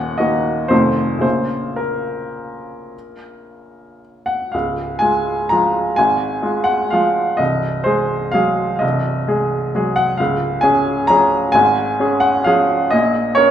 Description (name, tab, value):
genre	classical, piano waltz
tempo	103-140 BPM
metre	3/4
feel	rubato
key	Bb minor, Db major from 4.5 s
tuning	A4 = 442 Hz
part	bright upright piano	solo	0.0-13.5 s	C1 to Bb5	-15 LUFS	equal	none
room	wet recital hall reverb, RT60 1.4 s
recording	minimal, uncompressed stereo recording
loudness	-15 LUFS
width	side -10 dB against mid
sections	0.0-4.5 A section; 4.5-13.5 B section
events	none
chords	0.0 Ebm; 0.7 F7; 1.2 Bbm; 4.5 Db; 7.4 Ab7/C; 10.2 Db; 12.9 Bbm